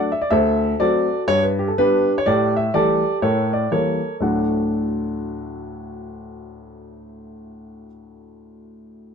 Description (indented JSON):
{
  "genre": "jazz, stride piano",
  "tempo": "122 BPM",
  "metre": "4/4",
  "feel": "swing 62% on 8ths",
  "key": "D major",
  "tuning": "A4 = 440 Hz",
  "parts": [
    { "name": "dark upright piano", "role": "solo", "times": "0.0-9.1 s", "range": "D2 to F#5", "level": "-19 LUFS", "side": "equal", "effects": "none" }
  ],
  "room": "moderate studio reverb, RT60 0.5 s",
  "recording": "close, detailed microphones",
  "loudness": "-17 LUFS",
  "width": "side -6 dB against mid",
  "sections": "0.0-4.2 A section; 4.2-8.1 B section",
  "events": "none",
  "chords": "0.3 D7; 1.3 G; 2.2 A7sus4; 3.2 A7b9; 4.2 D"
}